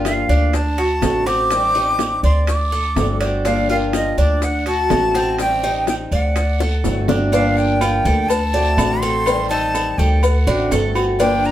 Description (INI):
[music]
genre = latin, Cuban son and guajira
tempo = 124 BPM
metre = 4/4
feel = straight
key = unclear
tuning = A4 = 440 Hz
[part]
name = picked old ladder-braced acoustic guitar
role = accompaniment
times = 0.0-11.5 s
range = D3 to G4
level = -23 LUFS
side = left 2 dB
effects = none
[part]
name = Cuban tres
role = arpeggios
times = 0.0-11.5 s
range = C4 to D5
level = -23 LUFS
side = right 2 dB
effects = none
[part]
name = upright bass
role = bass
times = 0.0-11.5 s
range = G1 to D2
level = -20 LUFS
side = equal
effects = none
[part]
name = breathy bright jazz flute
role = melody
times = 0.1-11.5 s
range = D5 to D6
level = -21 LUFS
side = equal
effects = none
[part]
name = bongos and cowbell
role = percussion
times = 0.1-11.4 s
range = none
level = -24 LUFS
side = left 4 dB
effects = none
[part]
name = guiro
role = percussion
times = 0.1-11.5 s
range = none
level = -36 LUFS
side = right 4 dB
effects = none
[part]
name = maracas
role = percussion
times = 0.1-11.5 s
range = none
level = -36 LUFS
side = left 4 dB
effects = none
[part]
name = timbales and agogo bells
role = percussion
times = 0.1-11.4 s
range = none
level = -26 LUFS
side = right 4 dB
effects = none
[sound]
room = moderate studio reverb, RT60 0.6 s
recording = heard from further back in the room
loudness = -15 LUFS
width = side -12 dB against mid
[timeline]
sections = 0.0-7.3 A section; 7.3-11.5 B section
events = drum fill 6.6-7.3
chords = 0.0 Gm7; 0.5 D7; 1.5 Am7b5; 2.5 D7; 3.5 Gm7; 4.4 D7; 5.4 Am7b5; 6.4 D7; 7.3 Gm7; 8.3 D7; 9.3 Am7b5; 10.2 D7